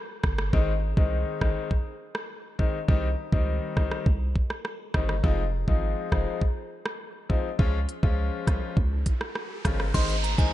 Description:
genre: dancehall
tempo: 102 BPM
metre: 4/4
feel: straight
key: F minor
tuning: A4 = 441 Hz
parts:
  - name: warm 808-style bass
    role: bass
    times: 0.2-10.5 s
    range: F1 to Db2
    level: -26 LUFS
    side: equal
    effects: none
  - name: island pop drum kit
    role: drums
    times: 0.2-10.5 s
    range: crash cymbal, hi-hat, kick drum, rim click, shaker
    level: -27 LUFS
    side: equal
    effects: none
  - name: bright concert grand piano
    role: accompaniment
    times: 0.5-10.5 s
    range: Eb3 to F4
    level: -32 LUFS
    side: left 5 dB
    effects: none
  - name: riser and downlifter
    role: sound effects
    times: 8.9-10.5 s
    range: none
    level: -35 LUFS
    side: right 4 dB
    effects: none
  - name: glassy synth bell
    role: melody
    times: 9.9-10.5 s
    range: Ab5 to C6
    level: -31 LUFS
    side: right 2 dB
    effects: chorus, tremolo
room: light reverb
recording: nothing above 11.0 kHz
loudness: -24 LUFS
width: side -14 dB against mid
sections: 0.0-9.9 A section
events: riser 8.9-9.9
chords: 0.0 N.C.; 0.5 Ab; 2.9 Cm; 5.2 Fm7; 7.6 Db; 9.9 Ab

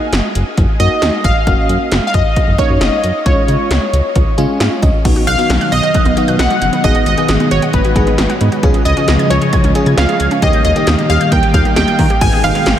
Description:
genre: synth-pop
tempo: 134 BPM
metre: 4/4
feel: straight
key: G# dorian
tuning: A4 = 440 Hz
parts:
  - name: funky polysynth comp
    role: melody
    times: 0.0-12.8 s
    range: B4 to G#5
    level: -16 LUFS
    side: equal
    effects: chorus, analog delay, shimmer reverb
  - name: FM electric piano with soft pad layer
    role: accompaniment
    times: 0.0-12.7 s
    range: G#3 to G#5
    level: -20 LUFS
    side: left 1 dB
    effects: chorus, shimmer reverb
  - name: chorused synth bass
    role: bass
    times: 0.1-12.7 s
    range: F#1 to D#3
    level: -15 LUFS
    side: equal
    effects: none
  - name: 80s electronic pad drums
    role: drums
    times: 0.1-12.8 s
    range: crash cymbal, hi-hat, kick drum, snare drum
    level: -15 LUFS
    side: equal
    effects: none
  - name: string machine, cellos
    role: sustained chords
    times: 5.0-12.8 s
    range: C#3 to G4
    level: -18 LUFS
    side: equal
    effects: ensemble chorus, shimmer reverb
  - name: analog pluck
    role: arpeggios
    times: 5.0-12.7 s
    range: A#3 to G#6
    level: -22 LUFS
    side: right 2 dB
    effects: chorus, analog delay, shimmer reverb
room: moderate huge ambient reverb, RT60 9.3 s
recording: dreamy mix soaked in reverb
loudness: -10 LUFS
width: side -10 dB against mid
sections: 0.0-5.1 A section; 5.1-12.2 B section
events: FM electric piano fill 4.2-5.1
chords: 0.0 D#m/F#; 1.5 F#; 3.3 C#; 5.1 B; 6.8 G#m7; 8.6 C#; 10.4 D#; 12.2 G#m7

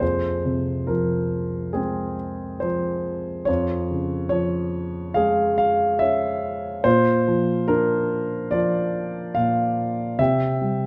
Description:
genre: classical, lyrical solo piano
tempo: 71 BPM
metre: 4/4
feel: rubato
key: F harmonic minor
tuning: A4 = 441 Hz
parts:
  - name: dark grand piano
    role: solo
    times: 0.0-10.9 s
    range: F2 to F5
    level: -23 LUFS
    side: equal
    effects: none
room: moderate scoring stage reverb, RT60 1.9 s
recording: none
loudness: -23 LUFS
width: mono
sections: 0.0-10.9 A section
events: none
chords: 0.0 Fm; 3.5 Db/F; 6.9 Bb; 10.2 C

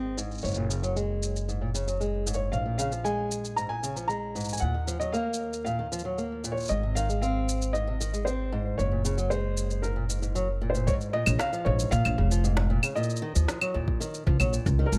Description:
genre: folktronica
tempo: 115 BPM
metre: 4/4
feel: straight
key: Bb minor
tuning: A4 = 436 Hz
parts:
  - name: felt-muted upright piano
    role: melody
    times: 0.0-14.9 s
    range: Bb4 to Bb5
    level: -35 LUFS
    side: equal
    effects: digital delay
  - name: fingerpicked old ladder-braced acoustic guitar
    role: arpeggios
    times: 0.0-15.0 s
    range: Ab2 to C4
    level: -34 LUFS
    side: equal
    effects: low-pass filter, digital delay
  - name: upright bass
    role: bass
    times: 0.0-15.0 s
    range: F1 to Bb2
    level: -31 LUFS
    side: equal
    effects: none
  - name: electronic shaker, claves and snare drum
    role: drums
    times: 0.2-15.0 s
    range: none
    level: -35 LUFS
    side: equal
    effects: overdrive, low-pass filter on perc, low-pass filter on snare
  - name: electronic kick drum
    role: drums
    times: 10.9-14.8 s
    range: none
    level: -31 LUFS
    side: equal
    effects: overdrive
room: small room ambience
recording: none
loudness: -28 LUFS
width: mono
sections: 0.0-10.9 A section; 10.9-15.0 B section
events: none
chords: 0.4 Gbsus2; 2.5 Bb7(no3); 4.6 Ebsus2; 6.7 Ab; 8.8 Gbadd9; 10.9 Bbm7; 13.0 Ebsus2

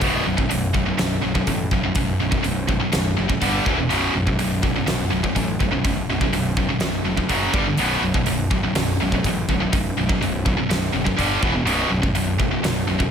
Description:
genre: heavy metal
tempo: 124 BPM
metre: 4/4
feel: straight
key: unclear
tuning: A4 = 440 Hz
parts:
  - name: heavy high-gain guitar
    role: riff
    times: 0.0-13.1 s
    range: B1 to G3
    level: -21 LUFS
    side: equal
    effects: distortion
  - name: fuzz picked electric bass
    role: bass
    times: 0.0-13.1 s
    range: B0 to A1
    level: -26 LUFS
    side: equal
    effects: overdrive
  - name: big rock drum kit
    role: drums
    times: 0.0-13.1 s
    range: hi-hat, kick drum, snare drum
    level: -24 LUFS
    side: equal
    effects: none
room: small room ambience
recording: none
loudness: -18 LUFS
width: side -8 dB against mid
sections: 0.0-13.1 A section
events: none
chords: 0.0 B5; 3.4 G5; 3.7 E5; 3.9 B5; 7.3 F#5; 7.5 G5; 7.8 B5; 11.2 G5; 11.4 E5; 11.7 B5

